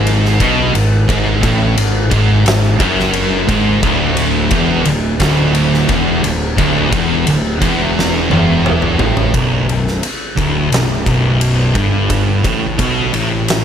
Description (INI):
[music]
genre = stoner and doom metal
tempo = 87 BPM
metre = 4/4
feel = straight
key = B dorian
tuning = A4 = 443 Hz
[part]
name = high-gain distorted guitar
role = riff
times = 0.0-9.3 s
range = D2 to B2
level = -18 LUFS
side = right 1 dB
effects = distortion
[part]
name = thick fuzz guitar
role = riff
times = 0.0-13.6 s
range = B1 to B2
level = -18 LUFS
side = left 6 dB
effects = distortion
[part]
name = thick fuzz guitar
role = riff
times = 0.0-13.6 s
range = B1 to B2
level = -17 LUFS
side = right 6 dB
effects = distortion
[part]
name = fuzz picked electric bass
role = bass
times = 0.0-13.6 s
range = B0 to B1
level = -20 LUFS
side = equal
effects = overdrive
[part]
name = oversized low-tuned drum kit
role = drums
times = 0.1-13.6 s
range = kick drum, ride cymbal, snare drum, toms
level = -18 LUFS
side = equal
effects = none
[sound]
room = light reverb, small room ambience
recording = none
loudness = -11 LUFS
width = side -8 dB against mid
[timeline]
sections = 0.0-9.3 A section; 9.3-13.6 B section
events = drum fill 8.0-9.3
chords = 0.0 F#madd9; 3.8 D5; 9.3 Bm